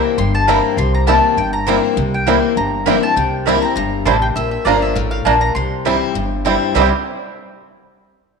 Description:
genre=bluegrass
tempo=201 BPM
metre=4/4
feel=swing 54% on 8ths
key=C mixolydian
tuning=A4 = 440 Hz
part: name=picked steel-string acoustic guitar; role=accompaniment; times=0.0-6.9 s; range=G2 to F4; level=-18 LUFS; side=left 9 dB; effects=none
part: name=mandolin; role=melody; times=0.2-6.9 s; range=D5 to E6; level=-19 LUFS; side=left 2 dB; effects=none
part: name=upright bass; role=bass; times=0.2-6.9 s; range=G1 to C2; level=-21 LUFS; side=right 1 dB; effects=none
part: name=bluegrass banjo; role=arpeggios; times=0.5-6.9 s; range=G3 to G4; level=-21 LUFS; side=right 9 dB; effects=slapback echo
part: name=mandolin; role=stabs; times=0.5-6.9 s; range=Bb3 to Bb5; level=-23 LUFS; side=right 9 dB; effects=none
room=moderate echo chamber reverb, RT60 1.8 s, small room reverb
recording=1960s-style stereo with parts hard left and right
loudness=-13 LUFS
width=side -5 dB against mid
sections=0.0-4.4 A section; 4.4-6.8 B section; 6.8-8.0 C section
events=none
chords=0.0 C7; 4.4 Bb; 5.6 C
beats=0.18 0.48 | 0.78 1.08 1.38 1.67 | 1.97 2.27 2.57 2.87 | 3.17 3.46 3.76 4.06 | 4.36 4.66 4.96 5.26 | 5.56 5.86 6.16 6.45 | 6.75

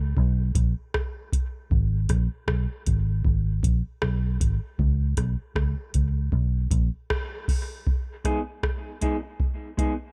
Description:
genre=dub reggae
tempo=78 BPM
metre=4/4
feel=straight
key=G# minor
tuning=A4 = 444 Hz
part: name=vintage muted fingered electric bass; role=bass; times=0.0-6.9 s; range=G#1 to C#2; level=-26 LUFS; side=equal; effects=none
part: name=soft vintage rhythm box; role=drums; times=0.2-10.0 s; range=hi-hat, kick drum, rim click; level=-28 LUFS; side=equal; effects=none
part: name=mellow electric guitar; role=accompaniment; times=8.2-9.9 s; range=G#3 to G#4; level=-32 LUFS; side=equal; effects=dub echo
room=little or no reverb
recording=dark, warm production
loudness=-26 LUFS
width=mono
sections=0.0-7.9 A section; 7.9-10.1 B section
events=break 0.0-7.9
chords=0.0 A#m; 1.7 G#m; 4.8 N.C.; 7.9 G#m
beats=0.17 0.94 | 1.71 2.48 3.25 4.02 | 4.79 5.55 6.32 7.09 | 7.86 8.63 9.40

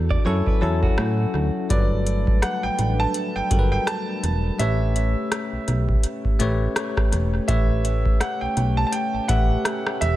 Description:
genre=contemporary R&B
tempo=83 BPM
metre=4/4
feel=swing 58% on 16ths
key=unclear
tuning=A4 = 440 Hz
part: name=bell-like tine electric piano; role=accompaniment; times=0.0-10.2 s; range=E3 to E5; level=-27 LUFS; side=left 4 dB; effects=fast stereo tremolo, tape echo
part: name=chorused pulse-width pad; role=sustained chords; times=0.0-10.2 s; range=E3 to B4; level=-32 LUFS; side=equal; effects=none
part: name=solid FM bass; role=bass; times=0.0-10.2 s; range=E1 to A2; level=-22 LUFS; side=equal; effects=none
part: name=direct-recorded clean electric guitar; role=arpeggios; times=0.1-1.7 s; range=F#4 to D5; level=-31 LUFS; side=right 4 dB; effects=tape echo
part: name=booming analog drum machine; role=drums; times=0.1-10.2 s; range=hi-hat, kick drum, rim click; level=-23 LUFS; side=equal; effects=none
part: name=clear grand piano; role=melody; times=1.7-10.2 s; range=D5 to A5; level=-27 LUFS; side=right 3 dB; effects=tape echo
room=digital ambience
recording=echo-heavy mix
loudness=-19 LUFS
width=side -14 dB against mid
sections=0.0-1.7 A section; 1.7-10.2 B section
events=none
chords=0.3 F#m7; 1.7 Gmaj9; 4.6 A9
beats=0.26 0.98 | 1.70 2.42 3.15 3.87 | 4.59 5.32 6.04 6.76 | 7.49 8.21 8.93 9.65

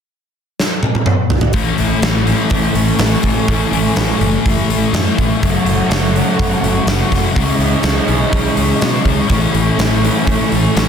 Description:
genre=rock, shoegaze and dream pop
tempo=124 BPM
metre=4/4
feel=straight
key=A lydian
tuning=A4 = 441 Hz
part: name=huge arena drum kit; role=drums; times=0.6-10.9 s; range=hi-hat, kick drum, snare drum, toms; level=-17 LUFS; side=equal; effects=none
part: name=dark analog pad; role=sustained chords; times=1.5-10.9 s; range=G#4 to C#6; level=-22 LUFS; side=right 2 dB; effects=chorus
part: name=raw garage guitar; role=riff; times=1.5-10.9 s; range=F#2 to F#4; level=-20 LUFS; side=right 11 dB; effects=overdrive, reverse reverb
part: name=thick fuzz guitar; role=riff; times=1.5-10.9 s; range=F#2 to C#4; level=-17 LUFS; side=left 9 dB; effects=distortion, analog chorus
part: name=picked electric bass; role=bass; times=1.5-10.9 s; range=F#1 to B2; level=-18 LUFS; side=right 1 dB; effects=none
room=moderate lush hall reverb, RT60 1.9 s, studio ambience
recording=dense, heavily limited modern master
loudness=-12 LUFS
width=side -7 dB against mid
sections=0.0-1.5 A section; 1.5-10.9 B section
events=drum fill 0.6-1.5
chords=0.0 N.C.; 1.5 Amaj7; 5.4 F#m7; 7.4 C#madd9; 9.3 Amaj7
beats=0.09 0.58 1.06 | 1.55 2.03 2.52 3.00 | 3.49 3.97 4.46 4.94 | 5.43 5.91 6.40 6.88 | 7.37 7.85 8.33 8.82 | 9.30 9.78 10.27 10.75

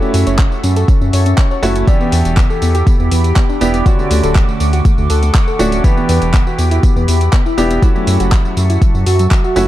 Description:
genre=progressive house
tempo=121 BPM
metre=4/4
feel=straight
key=E dorian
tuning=A4 = 440 Hz
part: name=evolving wavetable pad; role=sustained chords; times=0.0-9.7 s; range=F#4 to D6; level=-23 LUFS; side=left 1 dB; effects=chorus, built-in reverb, sidechain pumping
part: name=soft round pluck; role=arpeggios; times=0.0-9.6 s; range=F#3 to D5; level=-19 LUFS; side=equal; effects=wide subtle chorus, sidechain pumping, digital delay
part: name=warm grand piano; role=stabs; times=0.0-9.7 s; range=D3 to G4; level=-19 LUFS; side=right 2 dB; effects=sidechain pumping, digital delay
part: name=deep house drum kit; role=drums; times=0.0-9.7 s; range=handclaps, hi-hat, tambourine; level=-23 LUFS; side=equal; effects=none
part: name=round analog bass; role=bass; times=0.1-9.7 s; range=D1 to F#2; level=-14 LUFS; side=equal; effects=sidechain pumping
part: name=electronic kick drum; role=drums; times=0.4-9.4 s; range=none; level=-12 LUFS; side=equal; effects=none
room=little or no reverb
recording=dark, warm production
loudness=-10 LUFS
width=side -14 dB against mid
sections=0.0-9.7 A section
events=none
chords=0.0 F#m7; 1.9 Em7; 3.9 Dmaj7; 5.8 Em7; 7.8 F#m7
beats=0.39 0.88 1.38 | 1.88 2.37 2.87 3.36 | 3.86 4.36 4.85 5.35 | 5.84 6.34 6.83 7.33 | 7.83 8.32 8.82 9.31

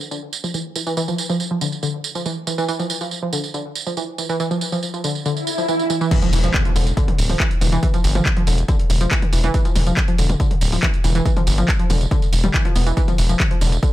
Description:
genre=driving peak-time techno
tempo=140 BPM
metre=4/4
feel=straight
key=E phrygian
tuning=A4 = 440 Hz
part: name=punchy analog drum machine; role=drums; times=0.0-13.9 s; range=crash cymbal, handclaps, hi-hat, tambourine, toms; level=-24 LUFS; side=right 1 dB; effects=sidechain pumping on perc, sidechain pumping on hats, sidechain pumping on cymbals, sidechain pumping on toms
part: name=analog pluck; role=riff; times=0.1-13.9 s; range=D3 to B3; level=-23 LUFS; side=right 1 dB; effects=chorus, sidechain pumping, ping-pong delay
part: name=swell and impact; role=sound effects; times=5.4-7.8 s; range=none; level=-25 LUFS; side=equal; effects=none
part: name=electronic kick drum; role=drums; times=6.1-13.9 s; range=none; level=-19 LUFS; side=equal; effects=none
part: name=gritty driven synth bass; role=bass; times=6.3-13.8 s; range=D1 to G1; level=-18 LUFS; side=equal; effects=tube saturation, sidechain pumping
room=light reverb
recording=none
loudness=-17 LUFS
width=side -14 dB against mid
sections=0.0-6.1 A section; 6.1-13.9 B section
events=swell 5.4-6.1; drop 6.1-13.9; impact 6.1-7.8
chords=0.0 E5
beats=0.11 0.54 | 0.97 1.40 1.83 2.26 | 2.68 3.11 3.54 3.97 | 4.40 4.83 5.26 5.68 | 6.11 6.54 6.97 7.40 | 7.83 8.26 8.68 9.11 | 9.54 9.97 10.40 10.83 | 11.26 11.68 12.11 12.54 | 12.97 13.40 13.83

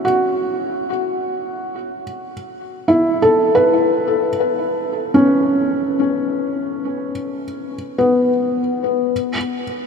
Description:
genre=ambient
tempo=53 BPM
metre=4/4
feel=straight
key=unclear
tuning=A4 = 441 Hz
part: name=felt-muted upright piano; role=solo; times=0.0-9.9 s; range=B3 to B4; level=-16 LUFS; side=left 1 dB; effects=ping-pong delay
room=wet huge ambient reverb, RT60 7.8 s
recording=none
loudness=-16 LUFS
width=side -6 dB against mid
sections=0.0-9.1 A section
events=none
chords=0.0 B9sus4; 9.1 Bsus2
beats=| 0.06 1.19 2.32 3.45 | 4.58 5.72 6.85 7.98 | 9.11

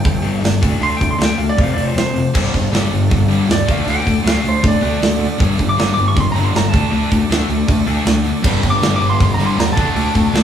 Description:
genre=hard rock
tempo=158 BPM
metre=4/4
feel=straight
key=unclear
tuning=A4 = 440 Hz
part: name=lightly driven lead guitar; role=melody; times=0.0-10.4 s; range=C5 to D6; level=-21 LUFS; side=right 2 dB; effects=none
part: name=percussive tonewheel organ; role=sustained chords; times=0.0-10.4 s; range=F3 to D5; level=-30 LUFS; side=equal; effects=none
part: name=sludgy distorted guitar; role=riff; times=0.0-10.4 s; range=F2 to D4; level=-20 LUFS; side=left 6 dB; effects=overdrive
part: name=fuzz picked electric bass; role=bass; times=0.1-10.4 s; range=F1 to Eb2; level=-19 LUFS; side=equal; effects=overdrive
part: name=big rock drum kit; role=drums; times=0.1-10.4 s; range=crash cymbal, hi-hat, kick drum, snare drum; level=-18 LUFS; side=right 1 dB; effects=none
part: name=scooped high-gain guitar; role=riff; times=2.3-10.4 s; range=G2 to D4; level=-22 LUFS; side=right 4 dB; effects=distortion
part: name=sludgy distorted guitar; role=riff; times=8.4-10.4 s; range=G2 to D4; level=-24 LUFS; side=equal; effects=overdrive
room=wet large studio reverb, RT60 1.0 s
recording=band playing live in one room, small room reverb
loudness=-13 LUFS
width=side -9 dB against mid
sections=0.0-10.4 A section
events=lead electric guitar solo 0.0-10.4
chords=0.0 G5; 0.6 D5; 1.6 F5; 2.3 G5; 3.7 D5; 5.4 G5; 6.7 D5; 8.4 G5; 9.8 D5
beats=0.05 0.44 | 0.82 1.20 1.58 1.97 | 2.35 2.73 3.11 3.49 | 3.88 4.26 4.64 5.02 | 5.40 5.78 6.16 6.54 | 6.92 7.30 7.68 8.06 | 8.44 8.82 9.20 9.59 | 9.96 10.35

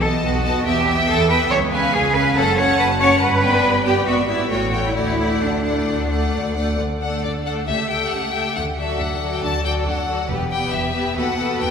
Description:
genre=quick classical-period movement for string orchestra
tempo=138 BPM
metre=4/4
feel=rubato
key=D major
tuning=A4 = 440 Hz
part: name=clear chamber violin section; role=melody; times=0.0-11.7 s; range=D5 to A5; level=-25 LUFS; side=left 5 dB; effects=none
part: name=clear studio violin section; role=second line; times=0.0-11.7 s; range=G4 to F#5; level=-25 LUFS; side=left 3 dB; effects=none
part: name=rich chamber viola section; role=accompaniment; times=0.0-11.7 s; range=F#3 to G4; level=-24 LUFS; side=equal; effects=none
part: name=clear chamber cello section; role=bass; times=0.0-11.7 s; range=D#2 to C#5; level=-21 LUFS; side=right 2 dB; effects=none
part: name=clear studio double bass section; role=bass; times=0.0-11.7 s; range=E1 to E2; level=-24 LUFS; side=right 1 dB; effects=none
room=wet concert hall reverb, RT60 2.5 s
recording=recorded in a church or concert hall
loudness=-17 LUFS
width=side -6 dB against mid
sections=0.0-6.8 A section; 6.8-11.7 A section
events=none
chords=0.0 B7; 0.7 Em; 1.5 C#7; 2.4 F#m; 3.2 G; 4.1 E7/G#; 4.5 A7; 5.0 D; 6.8 D5; 7.7 A7/C#; 8.6 D; 10.3 Em; 11.2 B7/D#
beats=0.23 0.65 1.08 | 1.50 1.93 2.35 2.78 | 3.21 3.63 4.07 4.50 | 4.96 5.42 5.88 6.33 | 6.79 7.23 7.67 8.11 | 8.55 8.99 9.42 9.86 | 10.29 10.73 11.17 11.60

